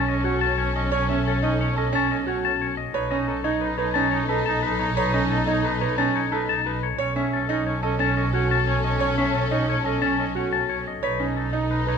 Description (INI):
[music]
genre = classical, minimalist pattern music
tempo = 178 BPM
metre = 6/4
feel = straight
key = unclear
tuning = A4 = 440 Hz
[part]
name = twangy electric guitar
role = melody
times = 0.0-12.0 s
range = A4 to A5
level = -27 LUFS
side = left 11 dB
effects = none
[part]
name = warm oboe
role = second line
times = 0.0-12.0 s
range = C#4 to D#4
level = -31 LUFS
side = right 2 dB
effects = none
[part]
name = rich symphonic string section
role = sustained chords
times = 0.0-12.0 s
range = C#4 to A4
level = -29 LUFS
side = left 5 dB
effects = none
[part]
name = bright concert grand piano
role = arpeggios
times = 0.0-12.0 s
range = C#4 to C#5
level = -26 LUFS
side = right 5 dB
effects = none
[part]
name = warm symphonic double bass section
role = bass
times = 0.0-12.0 s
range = B1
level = -27 LUFS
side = right 2 dB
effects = none
[sound]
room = moderate scoring stage reverb, RT60 1.9 s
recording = none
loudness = -21 LUFS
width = side -6 dB against mid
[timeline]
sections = 0.0-12.0 A section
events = none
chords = 0.0 A6/B; 2.9 B7; 7.0 A/B; 11.0 B7